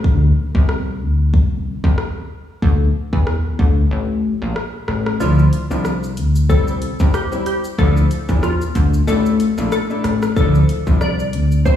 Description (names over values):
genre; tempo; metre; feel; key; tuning
dancehall; 93 BPM; 4/4; swing 56% on 16ths; D minor; A4 = 438 Hz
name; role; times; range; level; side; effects
plucky analog bass; bass; 0.0-11.8 s; A1 to E2; -16 LUFS; equal; none
deep house drum kit; drums; 0.0-11.8 s; hi-hat, kick drum, rim click, shaker; -18 LUFS; equal; none
glassy wavetable pluck; second line; 5.2-11.8 s; F4 to D5; -24 LUFS; left 1 dB; chorus, tape echo
clear concert grand piano; accompaniment; 5.2-11.8 s; F3 to E4; -22 LUFS; left 4 dB; none
room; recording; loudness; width
little or no reverb; played on a big sound system in a bare room, large studio reverb, small room ambience; -15 LUFS; side -10 dB against mid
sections
0.0-11.8 A section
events
break 0.0-5.2; kick muted 5.2-6.5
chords
0.0 Csus2; 1.3 N.C.; 2.6 Dsus2; 3.9 N.C.; 5.2 Dmadd9; 6.5 C; 7.8 Dmadd9; 9.1 Asus4; 10.4 Dmadd9